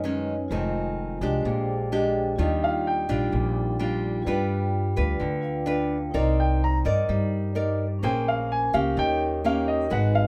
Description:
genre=bossa nova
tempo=128 BPM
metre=4/4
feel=straight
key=Eb major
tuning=A4 = 440 Hz
part: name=nylon-string guitar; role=accompaniment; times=0.0-10.3 s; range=F2 to D5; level=-29 LUFS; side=equal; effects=none
part: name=vibraphone with medium hard mallets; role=accompaniment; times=0.0-10.3 s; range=Db4 to Bb5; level=-34 LUFS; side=equal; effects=none
part: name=upright bass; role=bass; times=0.0-10.3 s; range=F1 to G2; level=-30 LUFS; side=equal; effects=none
part: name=warm grand piano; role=melody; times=2.6-3.1, 6.4-10.3 s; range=Eb5 to Bb5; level=-28 LUFS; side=equal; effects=none
room=light reverb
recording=none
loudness=-25 LUFS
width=mono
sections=0.0-10.3 A section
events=grand piano solo 0.0-10.3; vibraphone fill 5.2-6.1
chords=0.0 B69; 0.5 Fm7; 1.4 Bb13; 2.4 Ebmaj9; 4.3 G7; 6.1 Cm9; 8.0 Bbm9; 9.0 Eb7

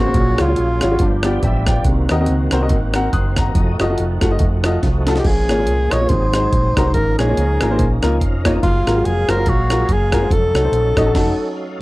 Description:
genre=uptempo gospel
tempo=142 BPM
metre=4/4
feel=swing 57% on 8ths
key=unclear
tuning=A4 = 441 Hz
part: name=breathy tenor saxophone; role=melody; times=0.0-1.3, 5.2-11.6 s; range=F4 to Db5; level=-20 LUFS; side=equal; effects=none
part: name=clear baby grand piano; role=accompaniment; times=0.0-11.3 s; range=G2 to Gb6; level=-20 LUFS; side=left 1 dB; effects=none
part: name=overdriven tonewheel organ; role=sustained chords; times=0.0-11.8 s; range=D3 to Ab5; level=-27 LUFS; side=right 2 dB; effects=fast rotary speaker, chorus vibrato
part: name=warm French horn section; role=sustained chords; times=0.0-11.8 s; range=Db3 to F5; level=-30 LUFS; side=equal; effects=none
part: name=hollow-body short-scale fingered electric bass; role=bass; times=0.0-11.3 s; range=F1 to Eb2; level=-19 LUFS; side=equal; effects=none
part: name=jungle sampler-style drum kit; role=drums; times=0.1-11.3 s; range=crash cymbal, hi-hat, kick drum, rim click, snare drum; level=-19 LUFS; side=equal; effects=none
room=studio ambience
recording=dry, close 1970s-style studio recording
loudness=-14 LUFS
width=side -19 dB against mid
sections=0.0-11.8 A section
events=tonewheel organ fill 1.0-1.9, 7.8-8.6; grand piano fill 1.2-1.9; drum fill 4.8-5.2; band accent 11.1-11.8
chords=0.2 Ab13sus4; 1.0 G7; 1.9 Cm7b5; 3.6 F7b9; 5.2 Bbm7; 6.1 Ab7; 6.9 Db69/Ab; 8.6 Gbmaj9; 10.3 F7b9b13

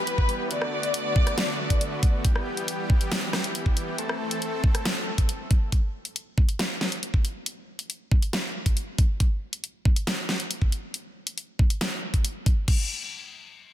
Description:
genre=heavy wobble dubstep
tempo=138 BPM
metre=4/4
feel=half-time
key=E minor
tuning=A4 = 441 Hz
part: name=rich studio violin section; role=melody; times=0.0-2.2 s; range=B4 to D5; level=-29 LUFS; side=left 2 dB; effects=vintage 12-bit sampler grit, ping-pong delay
part: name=supersaw chords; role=sustained chords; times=0.0-5.7 s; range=D3 to A4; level=-31 LUFS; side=equal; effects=sidechain pumping
part: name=dubstep drum kit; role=drums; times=0.1-12.8 s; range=crash cymbal, hi-hat, rim click, snare drum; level=-29 LUFS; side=equal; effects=none
part: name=electronic kick drum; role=drums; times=0.2-12.8 s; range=none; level=-21 LUFS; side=equal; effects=none
room=light reverb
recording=dense, heavily limited modern master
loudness=-23 LUFS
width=side -12 dB against mid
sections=0.0-12.7 A section; 12.7-13.7 B section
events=none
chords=0.0 Em; 0.5 Bm7/D; 2.2 Em; 4.0 Am; 5.7 N.C.

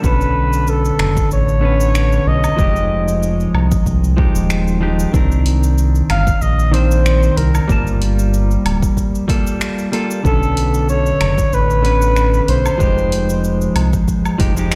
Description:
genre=sunset chillout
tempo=94 BPM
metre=4/4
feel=swing 54% on 16ths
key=unclear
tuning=A4 = 439 Hz
part: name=semi-hollow electric guitar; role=accompaniment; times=0.0-14.8 s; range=D3 to A5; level=-22 LUFS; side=equal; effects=vintage 12-bit sampler grit, tape echo
part: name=round analog bass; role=bass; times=0.0-14.7 s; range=D1 to C2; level=-18 LUFS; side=equal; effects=tube saturation
part: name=electronic kick drum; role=drums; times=0.0-14.5 s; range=none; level=-20 LUFS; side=equal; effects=overdrive
part: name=smooth R&B drum kit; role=drums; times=0.0-14.8 s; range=cabasa, finger snaps, hi-hat, woodblock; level=-29 LUFS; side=equal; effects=none
part: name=clear flugelhorn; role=melody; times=0.1-13.7 s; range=A4 to F5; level=-22 LUFS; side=equal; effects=delay
room=light reverb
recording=played on a big sound system in a bare room, large studio reverb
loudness=-15 LUFS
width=mono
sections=0.0-14.8 A section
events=none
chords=0.0 Bm9; 2.6 Fm9; 5.1 Cm9; 7.7 Gm9; 10.2 Bm9; 12.8 Fm9

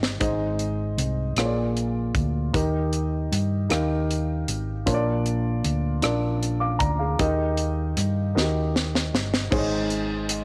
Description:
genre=slow gospel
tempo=52 BPM (dotted quarters)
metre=6/8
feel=straight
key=Ab major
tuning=A4 = 442 Hz
part: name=dark concert grand piano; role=accompaniment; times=0.0-10.4 s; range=Ab2 to D6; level=-28 LUFS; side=equal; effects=none
part: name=hollow-body short-scale fingered electric bass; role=bass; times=0.0-10.4 s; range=G1 to G2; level=-28 LUFS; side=equal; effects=none
part: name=tight funk drum kit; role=drums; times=0.0-10.4 s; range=crash cymbal, hi-hat, kick drum, rim click, snare drum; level=-29 LUFS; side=equal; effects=none
room=light reverb, small room ambience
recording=tape saturation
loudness=-25 LUFS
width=mono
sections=0.0-9.5 A section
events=drum fill 0.0, 8.4-9.5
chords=0.2 Ab; 1.4 Bb7; 2.5 Eb; 4.9 Bb; 7.2 Eb; 9.5 Ab

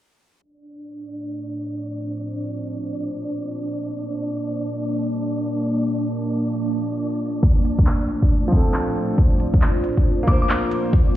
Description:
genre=future garage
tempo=137 BPM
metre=4/4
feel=swing 63% on 16ths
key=unclear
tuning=A4 = 440 Hz
part: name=deep dark ambient pad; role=sustained chords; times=1.3-11.2 s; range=A3 to D5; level=-26 LUFS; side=equal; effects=chorus, built-in reverb, sidechain pumping
part: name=wind-like tuned noise texture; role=texture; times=0.7-11.2 s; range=D4 to D5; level=-28 LUFS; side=right 1 dB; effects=built-in reverb
part: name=electronic kick drum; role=drums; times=7.4-11.0 s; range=none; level=-16 LUFS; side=equal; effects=overdrive, small room ambience
part: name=organic electronic drum kit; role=drums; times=7.6-10.8 s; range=handclaps, hi-hat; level=-28 LUFS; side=equal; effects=overdrive, small room ambience
part: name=warm upright piano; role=accompaniment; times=8.5-10.9 s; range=F3 to C5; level=-26 LUFS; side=equal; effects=sidechain pumping, analog delay
part: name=glassy synth bell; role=melody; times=10.3-10.5 s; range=D6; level=-28 LUFS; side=left 2 dB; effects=chorus, tremolo, tape echo
room=moderate recital hall reverb, RT60 1.5 s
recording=played on a big sound system in a bare room, cassette tape, stone room reverb, low-pass filter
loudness=-19 LUFS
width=side -13 dB against mid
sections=0.4-11.2 A section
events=filter sweep on ambient pad 0.4-11.2; filter sweep 0.4-11.2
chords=0.4 F; 2.2 Bbsus2; 3.9 Gm; 7.4 F; 9.2 Bbsus2

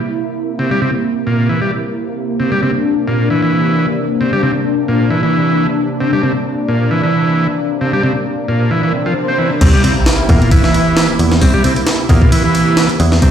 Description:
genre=breakbeat, breaks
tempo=133 BPM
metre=4/4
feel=swing 55% on 16ths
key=unclear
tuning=A4 = 440 Hz
part: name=lush unison pad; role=sustained chords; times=0.0-13.3 s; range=C3 to E4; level=-17 LUFS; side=left 1 dB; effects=chorus, phaser, vintage 12-bit sampler grit, sidechain pumping
part: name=combo organ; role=riff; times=0.6-13.3 s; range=Bb2 to C4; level=-15 LUFS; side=right 1 dB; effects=tube saturation, digital delay
part: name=swell and sub drop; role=sound effects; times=8.9-11.4 s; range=none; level=-18 LUFS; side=equal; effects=none
part: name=picked electric bass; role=bass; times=9.6-13.3 s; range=C2 to E2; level=-13 LUFS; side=equal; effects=none
part: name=breakbeat sampler-style drum kit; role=drums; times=9.6-13.3 s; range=crash cymbal, hi-hat, kick drum, ride cymbal, snare drum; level=-14 LUFS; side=equal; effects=small room ambience
room=wet studio reverb, RT60 0.5 s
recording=played on a big sound system in a bare room, large studio reverb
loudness=-12 LUFS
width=side -9 dB against mid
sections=0.0-9.6 A section; 9.6-13.3 B section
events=filter sweep on analog synth pad 0.0-9.6; swell 8.9-9.6; drop 9.6-13.3; impact 9.6-11.4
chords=0.0 C7

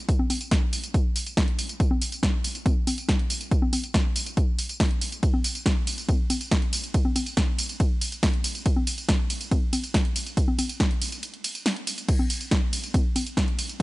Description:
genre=trance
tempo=140 BPM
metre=4/4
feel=straight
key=none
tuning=none
part: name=electronic kick drum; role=drums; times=0.1-13.8 s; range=none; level=-24 LUFS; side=equal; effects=overdrive
part: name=punchy analog drum machine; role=drums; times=0.1-13.8 s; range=congas, crash cymbal, hi-hat, ride cymbal, snare drum, tambourine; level=-27 LUFS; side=equal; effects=overdrive
room=little or no reverb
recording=nothing above 10.9 kHz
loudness=-22 LUFS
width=side -20 dB against mid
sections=0.0-13.8 A section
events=break 11.2-12.1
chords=none

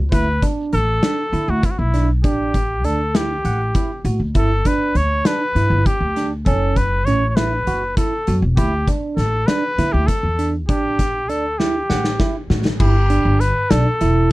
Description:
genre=progressive instrumental, band music in an uneven meter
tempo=199 BPM (eighths)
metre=7/8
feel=straight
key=G lydian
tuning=A4 = 442 Hz
part: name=upright bass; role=bass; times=0.0-14.3 s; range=E1 to D3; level=-19 LUFS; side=equal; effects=none
part: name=clear trumpet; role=melody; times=0.1-14.3 s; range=E4 to C#5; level=-21 LUFS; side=equal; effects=none
part: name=bell-like tine electric piano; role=arpeggios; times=0.1-14.3 s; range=C#4 to F#5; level=-23 LUFS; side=right 4 dB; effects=phaser
part: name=loose indie drum kit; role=drums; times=0.1-14.1 s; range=crash cymbal, hi-hat, kick drum, snare drum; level=-20 LUFS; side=left 1 dB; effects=none
room=little or no reverb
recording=none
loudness=-16 LUFS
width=side -19 dB against mid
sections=0.0-12.8 A section; 12.8-14.3 B section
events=drum fill 11.6-12.8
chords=0.1 Dsus2; 2.2 A7sus4; 4.3 G; 6.5 F#m7; 8.6 Dsus2; 10.7 A7sus4; 12.8 G

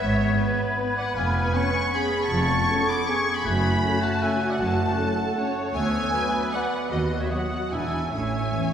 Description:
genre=classical, orchestral ballroom waltz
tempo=155 BPM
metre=3/4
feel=uneven beats, rubato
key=unclear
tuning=A4 = 440 Hz
part: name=rich studio violin section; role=melody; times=0.0-8.7 s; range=D#5 to D6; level=-32 LUFS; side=left 2 dB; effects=none
part: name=mellow hollow concert flute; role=second line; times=0.0-8.7 s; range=E6 to G#6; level=-33 LUFS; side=left 2 dB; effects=none
part: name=mellow oboe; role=second line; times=0.0-8.7 s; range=B4 to B5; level=-31 LUFS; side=right 1 dB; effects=none
part: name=rich symphonic violin section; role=second line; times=0.0-8.7 s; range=D#5 to D6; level=-31 LUFS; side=left 2 dB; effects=none
part: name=warm clarinet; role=second line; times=0.0-8.7 s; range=A3 to D4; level=-32 LUFS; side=left 2 dB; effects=none
part: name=rich symphonic viola section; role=accompaniment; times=0.0-8.7 s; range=E4 to C#5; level=-30 LUFS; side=right 2 dB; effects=none
part: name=rich symphonic cello section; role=bass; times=0.0-8.7 s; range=D2 to A2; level=-30 LUFS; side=right 1 dB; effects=none
part: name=rich symphonic double bass section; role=bass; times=0.0-8.5 s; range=E1 to D#2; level=-30 LUFS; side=right 1 dB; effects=none
part: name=mellow French horn section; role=sustained chords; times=0.4-8.7 s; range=E3 to D4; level=-34 LUFS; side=left 3 dB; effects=none
room=wet concert hall reverb, RT60 2.0 s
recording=heard from further back in the room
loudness=-22 LUFS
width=side -8 dB against mid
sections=0.0-8.7 A section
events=none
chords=0.0 E/G#; 1.2 C#7/E#; 3.5 F#m; 5.7 Bm/D; 6.9 B/D#; 7.7 E7; 8.1 A

